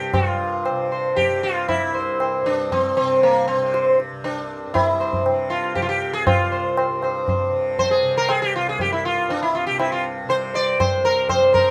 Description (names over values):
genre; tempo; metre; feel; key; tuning
indian classical, Hindustani; 118 BPM; 3/4; straight; C major; A4 = 440 Hz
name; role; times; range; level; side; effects
sitar; melody; 0.0-11.7 s; Bb3 to D5; -21 LUFS; equal; none
tanpura; drone; 0.0-11.7 s; C2 to C3; -33 LUFS; equal; none
tabla; percussion; 0.1-11.7 s; none; -27 LUFS; equal; none
room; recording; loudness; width
moderate studio reverb, RT60 0.6 s; none; -21 LUFS; mono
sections
0.1-11.7 A section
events
speeding up 0.0-11.7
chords
none